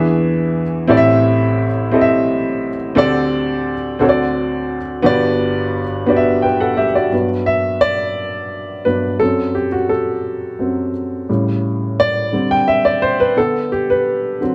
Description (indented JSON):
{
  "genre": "gospel",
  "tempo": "58 BPM (dotted quarters)",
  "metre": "6/8",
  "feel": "straight",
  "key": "G major",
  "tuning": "A4 = 440 Hz",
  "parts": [
    { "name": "warm upright piano", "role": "solo", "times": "0.0-14.5 s", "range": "G1 to G5", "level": "-17 LUFS", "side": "equal", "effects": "none" }
  ],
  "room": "light reverb",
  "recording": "none",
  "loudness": "-17 LUFS",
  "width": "mono",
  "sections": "0.0-7.1 A section; 7.1-14.5 B section",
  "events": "upright piano solo 7.1-14.5",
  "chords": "0.0 E7; 0.9 Am7; 3.0 D7sus4; 4.0 D7; 5.0 Gmaj7; 9.2 F#dim; 11.3 A7; 12.3 D7sus4; 13.4 Gadd9/D",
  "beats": "| 0.89 1.93 | 2.96 4.00 | 5.04 6.08 | 7.12 8.16 | 9.20 10.24 | 11.29 12.33 | 13.37 14.41"
}